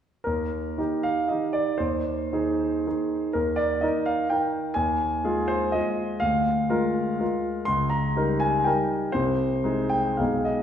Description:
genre	classical, romantic triple-time dance for piano with dotted rhythms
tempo	107-134 BPM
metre	3/4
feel	rubato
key	Eb major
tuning	A4 = 443 Hz
part	clear concert grand piano	solo	0.2-10.6 s	Cb2 to C6	-22 LUFS	equal	none
room	wet recital hall reverb, RT60 1.6 s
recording	heard from further back in the room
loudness	-23 LUFS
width	side -9 dB against mid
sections	0.3-10.6 A section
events	none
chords	0.3 Eb; 1.8 Ab/Eb; 3.3 Eb; 4.8 Fm7/Eb; 6.2 Bb7/D; 7.7 Eb7/Db; 9.1 Ab/C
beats	| 0.26 0.78 1.30 | 1.80 2.33 2.85 | 3.35 3.83 4.30 | 4.77 5.26 5.76 | 6.23 6.71 7.21 | 7.69 8.18 8.68 | 9.15 9.64 10.20

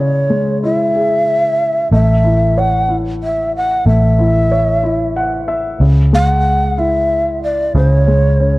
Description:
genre	six-eight pop ballad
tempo	62 BPM (dotted quarters)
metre	6/8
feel	straight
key	unclear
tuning	A4 = 441 Hz
part	long shakuhachi	melody	0.0-8.6 s	C#5 to F#5	-16 LUFS	equal	none
part	warm concert grand piano	accompaniment	0.0-8.6 s	C#3 to F#5	-18 LUFS	left 1 dB	none
part	vintage muted fingered electric bass	bass	1.9-8.6 s	A1 to C#2	-14 LUFS	equal	none
room	light reverb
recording	worn, warbling old tape, cassette tape, warbly pitch drift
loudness	-11 LUFS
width	side -20 dB against mid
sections	0.0-8.6 A section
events	grand piano fill 4.8-5.8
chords	0.0 C#m; 1.9 A; 5.8 C#m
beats	0.94 | 1.92 2.89 | 3.86 4.83 | 5.81 6.78 | 7.75

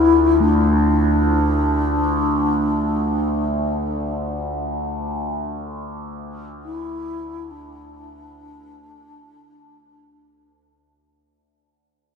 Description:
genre	world meditative, free-time meditation music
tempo	free time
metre	none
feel	none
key	D minor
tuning	A4 = 440 Hz
part	reedy bass flute	melody	0.0-10.8 s	D4 to E4	-20 LUFS	left 2 dB	tape echo
part	overtone-sweeping drone	drone	0.0-11.2 s	D2	-23 LUFS	right 1 dB	chorus, built-in reverb, phaser
part	quartz singing bowl	texture	0.0-8.2 s	A3 to F4	-25 LUFS	left 1 dB	none
room	moderate huge ambient reverb, RT60 7.2 s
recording	dark, warm production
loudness	-18 LUFS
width	side -6 dB against mid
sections	0.0-11.1 A section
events	fade-out 0.0-11.1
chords	none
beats	free time

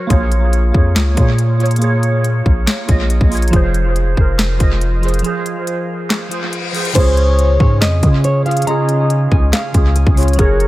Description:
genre	hip hop, trap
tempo	140 BPM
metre	4/4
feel	half-time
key	Db major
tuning	A4 = 437 Hz
part	glassy digital keys	accompaniment	0.0-10.7 s	Db3 to Eb5	-19 LUFS	right 2 dB	chorus, low-pass filter, dub echo
part	long sustained 808-style bass	bass	0.1-10.7 s	F1 to Db3	-14 LUFS	equal	none
part	trap drum kit	drums	0.1-10.7 s	crash cymbal, handclaps, hi-hat, kick drum, snare drum	-16 LUFS	equal	dub echo
part	reverse cymbal	sound effects	6.3-7.0 s	none	-24 LUFS	left 6 dB	none
part	nylon-string guitar	melody	7.0-10.7 s	Ab4 to Bb5	-20 LUFS	equal	low-pass filter, dub echo
part	soft octave-layered synth lead	second line	7.0-10.7 s	Bb4 to F5	-23 LUFS	left 2 dB	chorus, tremolo, dub echo
room	little or no reverb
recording	echo-heavy mix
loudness	-12 LUFS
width	side -17 dB against mid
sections	0.0-7.0 A section; 7.0-10.7 B section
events	break 5.2-7.0; reverse cymbal 6.3-7.0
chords	0.1 Bbm7; 3.5 Fm; 7.0 Db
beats	| 0.10 0.53 0.96 1.39 | 1.82 2.25 2.67 3.10 | 3.53 3.96 4.39 4.82 | 5.25 5.67 6.10 6.53 | 6.96 7.39 7.82 8.24 | 8.67 9.10 9.53 9.96 | 10.39

